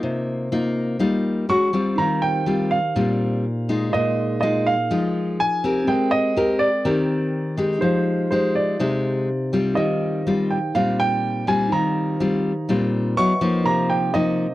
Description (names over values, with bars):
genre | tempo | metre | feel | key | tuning
bossa nova | 123 BPM | 4/4 | straight | Eb major | A4 = 441 Hz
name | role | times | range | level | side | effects
warm baby grand piano | melody | 0.0-14.5 s | C5 to Db6 | -23 LUFS | right 2 dB | none
nylon-string guitar | accompaniment | 0.0-14.5 s | Bb2 to Bb4 | -21 LUFS | left 2 dB | none
bell-like tine electric piano | accompaniment | 2.0-14.5 s | C4 to D6 | -29 LUFS | right 3 dB | none
room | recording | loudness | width
light reverb | dry, close 1970s-style studio recording | -19 LUFS | side -16 dB against mid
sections
0.0-14.5 A section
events
none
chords
0.0 Cm7; 1.5 Dbmaj7#11; 2.0 Bb7sus4; 5.9 Abmaj9; 7.8 Fm9; 9.8 Eb69; 13.2 Dbm11; 13.7 Cm11